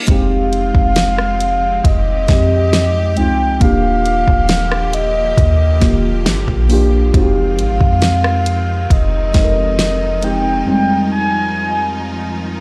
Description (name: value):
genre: contemporary R&B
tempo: 68 BPM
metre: 4/4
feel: straight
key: F dorian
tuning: A4 = 444 Hz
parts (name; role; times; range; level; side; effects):
- muted felt-like synth keys; accompaniment; 0.0-12.6 s; F2 to Bb4; -22 LUFS; equal; chorus, phaser
- mellow horn-like synth lead; melody; 0.1-12.4 s; Eb5 to Ab5; -21 LUFS; equal; chorus
- bright studio string section; sustained chords; 0.1-12.6 s; D3 to G4; -29 LUFS; equal; none
- clean 808-style bass; bass; 0.1-10.6 s; Eb1 to F2; -19 LUFS; equal; none
- smooth R&B drum kit; drums; 0.1-10.4 s; hi-hat, kick drum, rim click, snare drum; -17 LUFS; equal; none
room: little or no reverb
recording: played on a big sound system in a bare room, large studio reverb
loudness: -15 LUFS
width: mono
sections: 0.1-12.6 A section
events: none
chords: 0.1 Fm7; 3.6 Ebmaj7; 7.1 Fm7; 10.7 Fm9